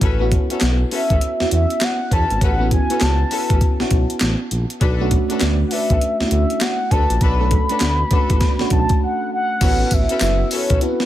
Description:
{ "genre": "R&B, new jack swing", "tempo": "100 BPM", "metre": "4/4", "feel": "swing 63% on 16ths", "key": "unclear", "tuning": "A4 = 440 Hz", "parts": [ { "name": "mellow FM electric piano", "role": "accompaniment", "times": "0.0-11.1 s", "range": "A3 to A4", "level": "-24 LUFS", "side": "right 2 dB", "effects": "chorus, phaser" }, { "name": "muted studio string section", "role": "stabs", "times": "0.0-10.7 s", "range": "C#4 to B4", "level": "-28 LUFS", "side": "left 5 dB", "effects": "none" }, { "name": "smooth synth bass", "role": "bass", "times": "0.0-10.8 s", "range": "F#1 to E2", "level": "-20 LUFS", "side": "equal", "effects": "none" }, { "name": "breakbeat sampler-style drum kit", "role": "drums", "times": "0.0-11.1 s", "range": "crash cymbal, handclaps, hi-hat, kick drum, snare drum, tambourine", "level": "-19 LUFS", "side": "equal", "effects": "none" }, { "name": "mellow horn-like synth lead", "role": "melody", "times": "0.9-11.1 s", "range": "B4 to B5", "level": "-22 LUFS", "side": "left 1 dB", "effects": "chorus" } ], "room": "digital ambience", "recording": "none", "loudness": "-15 LUFS", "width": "side -13 dB against mid", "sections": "0.0-9.6 A section; 9.6-11.1 B section", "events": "break 9.0-9.6", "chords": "0.0 A69; 4.8 Bm7; 9.6 A69" }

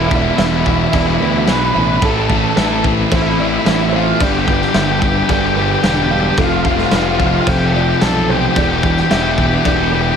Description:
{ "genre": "post-rock", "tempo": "110 BPM", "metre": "4/4", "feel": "straight", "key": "A minor", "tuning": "A4 = 438 Hz", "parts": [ { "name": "octave-fuzz lead guitar", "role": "melody", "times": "0.0-10.2 s", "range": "E4 to B4", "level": "-18 LUFS", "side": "left 1 dB", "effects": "distortion, slapback echo" }, { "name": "dark analog pad", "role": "sustained chords", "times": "0.6-10.2 s", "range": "C4 to E6", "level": "-32 LUFS", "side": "left 2 dB", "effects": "none" }, { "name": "electric guitar through a small old amp", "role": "arpeggios", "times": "0.0-10.2 s", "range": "E2 to A4", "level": "-26 LUFS", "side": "left 3 dB", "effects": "none" }, { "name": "felt-muted upright piano", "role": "arpeggios", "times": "0.0-10.2 s", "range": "A4 to F5", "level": "-27 LUFS", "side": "right 5 dB", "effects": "slapback echo" }, { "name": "overdriven electric guitar", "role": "riff", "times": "0.0-10.2 s", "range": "E2 to A3", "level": "-20 LUFS", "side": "left 13 dB", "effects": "none" }, { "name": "thick fuzz guitar", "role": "riff", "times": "0.0-10.2 s", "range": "E2 to A3", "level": "-20 LUFS", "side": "right 11 dB", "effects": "distortion" }, { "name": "fuzz fingered electric bass", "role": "bass", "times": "0.0-10.1 s", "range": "E1 to D2", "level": "-20 LUFS", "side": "equal", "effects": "overdrive" }, { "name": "loose indie drum kit", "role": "drums", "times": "0.1-9.8 s", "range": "crash cymbal, kick drum, snare drum", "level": "-19 LUFS", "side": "equal", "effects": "none" } ], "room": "light reverb, small room ambience", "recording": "none", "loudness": "-12 LUFS", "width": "side -7 dB against mid", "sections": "0.0-10.2 A section", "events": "none", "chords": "0.0 Em7; 2.0 Am; 4.2 Gadd9; 6.4 Fadd9; 8.6 Em7" }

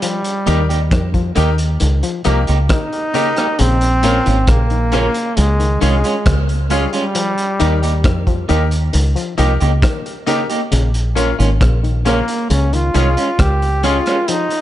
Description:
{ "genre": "roots reggae", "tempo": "67 BPM", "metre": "4/4", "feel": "straight", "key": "unclear", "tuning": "A4 = 440 Hz", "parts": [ { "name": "bright trombone", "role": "melody", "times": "0.0-14.6 s", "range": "G3 to G4", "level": "-19 LUFS", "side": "equal", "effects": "tape echo" }, { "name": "muted clav", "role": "arpeggios", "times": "0.0-14.5 s", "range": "Bb2 to G3", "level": "-25 LUFS", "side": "left 6 dB", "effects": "auto-wah" }, { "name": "crunchy breakbeat drum kit", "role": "drums", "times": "0.0-14.6 s", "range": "hi-hat, kick drum, rim click", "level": "-20 LUFS", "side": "equal", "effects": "analog delay" }, { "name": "electric guitar at the edge of break-up", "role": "accompaniment", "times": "0.5-14.2 s", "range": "Ab3 to G4", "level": "-22 LUFS", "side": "right 4 dB", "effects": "tape echo" }, { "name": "bright grand piano", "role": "stabs", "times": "0.5-14.0 s", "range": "Db4 to Bb4", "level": "-25 LUFS", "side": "left 7 dB", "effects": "none" }, { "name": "deep dub fingered electric bass", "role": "bass", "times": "0.5-14.0 s", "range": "Ab1 to F2", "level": "-15 LUFS", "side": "equal", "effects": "none" } ], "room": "light reverb", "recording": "nothing above 10.6 kHz", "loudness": "-13 LUFS", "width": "side -13 dB against mid", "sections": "0.0-14.6 A section", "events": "none", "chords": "0.0 Eb; 3.6 Bbm; 5.4 Db; 7.2 Eb; 10.7 Bbm; 12.5 Db" }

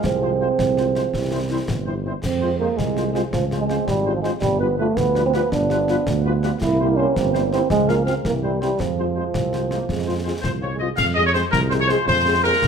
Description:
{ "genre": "military-style march for wind band", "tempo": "110 BPM (dotted quarters)", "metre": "6/8", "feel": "straight", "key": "F minor", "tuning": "A4 = 440 Hz", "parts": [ { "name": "warm euphonium", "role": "second line", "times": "0.0-10.4 s", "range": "F3 to E4", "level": "-21 LUFS", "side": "right 4 dB", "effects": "none" }, { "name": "mellow trombone section", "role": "sustained chords", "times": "0.0-12.7 s", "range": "E3 to C4", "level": "-31 LUFS", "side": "right 4 dB", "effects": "none" }, { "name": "mellow tuba", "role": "bass", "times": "0.0-12.7 s", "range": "G1 to F2", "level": "-24 LUFS", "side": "right 2 dB", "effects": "none" }, { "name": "concert snare drum, concert bass drum and clash cymbals", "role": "drums", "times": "0.0-12.7 s", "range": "none", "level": "-28 LUFS", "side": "left 2 dB", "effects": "none" }, { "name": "warm trumpet section", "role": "melody", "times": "0.2-12.7 s", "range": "Bb4 to F5", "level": "-24 LUFS", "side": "left 1 dB", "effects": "none" }, { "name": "mellow French horn section", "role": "accompaniment", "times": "0.2-12.5 s", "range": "F3 to Ab4", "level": "-28 LUFS", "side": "left 5 dB", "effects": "none" } ], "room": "moderate large studio reverb, RT60 1.1 s", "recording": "none", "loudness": "-18 LUFS", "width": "side -6 dB against mid", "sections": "0.0-11.0 A section; 11.0-12.7 B section", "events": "none", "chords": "0.0 Fm/C; 1.1 C; 2.2 Fm; 3.3 Dbmaj7; 4.4 G7; 6.6 C7; 7.7 Db; 8.2 C; 8.8 Fm" }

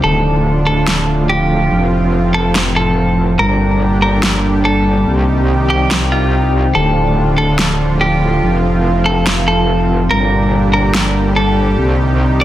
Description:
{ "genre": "heavy wobble dubstep", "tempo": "143 BPM", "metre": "4/4", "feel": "swing 53% on 16ths, half-time", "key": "D phrygian", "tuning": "A4 = 437 Hz", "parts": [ { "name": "semi-hollow electric guitar", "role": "melody", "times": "0.0-12.4 s", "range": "F4 to D5", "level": "-18 LUFS", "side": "equal", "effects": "spring reverb, dub echo" }, { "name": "supersaw pad", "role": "sustained chords", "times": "0.0-12.4 s", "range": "A2 to G4", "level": "-20 LUFS", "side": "right 1 dB", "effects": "none" }, { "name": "metallic wobble bass", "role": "bass", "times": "0.0-12.4 s", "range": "D1 to C2", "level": "-14 LUFS", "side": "equal", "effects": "chorus, overdrive" }, { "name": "warbly tape-like pad", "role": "texture", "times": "0.0-12.4 s", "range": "Bb3 to G5", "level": "-22 LUFS", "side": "equal", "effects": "chorus, built-in reverb" }, { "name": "electronic snare drum", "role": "drums", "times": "0.9-11.0 s", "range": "none", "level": "-16 LUFS", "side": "equal", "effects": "none" } ], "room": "light reverb", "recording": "dense, heavily limited modern master", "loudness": "-11 LUFS", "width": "side -13 dB against mid", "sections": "0.0-12.4 A section", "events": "none", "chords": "0.0 Dm; 1.7 F; 3.4 Gm; 5.1 Cm; 6.8 Dm; 8.4 F; 10.1 Gm; 11.8 Cm" }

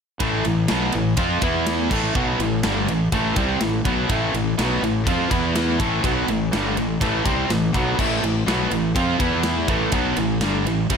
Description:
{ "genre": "heavy metal", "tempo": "123 BPM", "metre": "4/4", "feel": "straight", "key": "A minor", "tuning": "A4 = 440 Hz", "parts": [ { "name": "distorted electric guitar", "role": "riff", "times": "0.2-11.0 s", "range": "G2 to F4", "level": "-26 LUFS", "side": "equal", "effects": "distortion" }, { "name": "heavy high-gain guitar", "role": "riff", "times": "0.2-11.0 s", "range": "G2 to F4", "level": "-25 LUFS", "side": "left 10 dB", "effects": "distortion" }, { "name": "high-gain distorted guitar", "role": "riff", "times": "0.2-11.0 s", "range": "G2 to F4", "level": "-25 LUFS", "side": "right 11 dB", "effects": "distortion" }, { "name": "fuzz fingered electric bass", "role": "bass", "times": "0.2-11.0 s", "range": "G1 to F2", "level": "-26 LUFS", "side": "equal", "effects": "overdrive" }, { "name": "tight metal drum kit", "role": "drums", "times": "0.2-11.0 s", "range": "crash cymbal, kick drum, ride cymbal, snare drum", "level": "-26 LUFS", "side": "equal", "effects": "none" } ], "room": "small room ambience", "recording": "none", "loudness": "-18 LUFS", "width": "side -6 dB against mid", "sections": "0.2-11.0 A section", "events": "none", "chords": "0.2 Am; 1.4 E5; 1.9 Am; 5.3 E5; 5.8 Am; 9.2 E5; 9.7 Am" }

